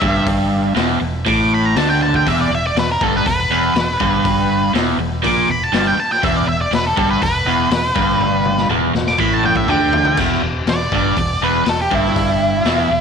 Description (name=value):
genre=blues rock power trio and southern rock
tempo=121 BPM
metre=4/4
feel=straight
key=E minor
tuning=A4 = 441 Hz
part: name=octave-fuzz lead guitar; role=melody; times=0.0-13.0 s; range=E4 to D6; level=-18 LUFS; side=equal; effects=distortion
part: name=overdriven electric guitar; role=riff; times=0.0-13.0 s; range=E2 to D3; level=-18 LUFS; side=right 1 dB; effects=none
part: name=growling fingered electric bass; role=bass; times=0.0-13.0 s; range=E1 to D2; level=-23 LUFS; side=equal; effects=overdrive
part: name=raw garage drum kit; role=drums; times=0.0-12.8 s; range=crash cymbal, hi-hat, kick drum, snare drum, toms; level=-22 LUFS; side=left 3 dB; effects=none
room=moderate echo chamber reverb, RT60 1.5 s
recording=1960s-style stereo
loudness=-14 LUFS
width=side -6 dB against mid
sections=0.0-10.2 A section; 10.2-13.0 B section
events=lead electric guitar solo 0.0-10.2; drum fill 2.0, 8.2-10.2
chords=0.0 Em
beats=| 0.28 0.77 1.27 1.77 | 2.27 2.76 3.26 3.76 | 4.25 4.75 5.24 5.74 | 6.23 6.73 7.22 7.72 | 8.21 8.71 9.20 9.69 | 10.19 10.68 11.18 11.68 | 12.17 12.67